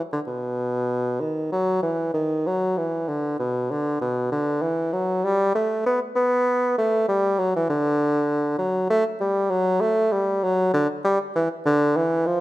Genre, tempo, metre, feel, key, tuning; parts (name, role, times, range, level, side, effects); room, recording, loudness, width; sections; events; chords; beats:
classical, baroque-style fantasia for unaccompanied bassoon; 65 BPM (dotted quarters); 12/8; rubato; A4 = 441 Hz
mellow bassoon; solo; 0.0-12.4 s; B2 to B3; -20 LUFS; equal
moderate recital hall reverb, RT60 1.5 s; close, detailed microphones; -20 LUFS; side -16 dB against mid
0.0-12.4 A section
| 0.59 1.52 2.47 3.40 | 4.32 5.24 6.17 7.09 | 8.00 8.90 9.83 10.75 | 11.66